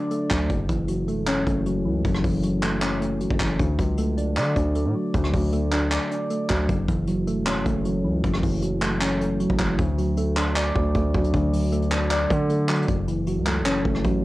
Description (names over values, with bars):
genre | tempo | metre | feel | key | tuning
hip hop, trap | 155 BPM | 4/4 | half-time | unclear | A4 = 440 Hz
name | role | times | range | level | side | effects
soft electric-piano-like synth keys | accompaniment | 0.0-14.2 s | F#2 to D5 | -24 LUFS | equal | chorus
soft brush drum kit | drums | 0.1-14.1 s | handclaps, hi-hat, kick drum, rim click | -27 LUFS | equal | cassette tape
distorted 808-style bass | bass | 0.3-14.2 s | E1 to D3 | -26 LUFS | equal | distortion
room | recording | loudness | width
light reverb | home recording on cassette | -21 LUFS | side -18 dB against mid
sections
0.0-9.8 A section; 9.8-14.2 B section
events
none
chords
0.5 F#m7; 3.6 D; 6.7 F#m7; 9.8 D; 12.9 F#m7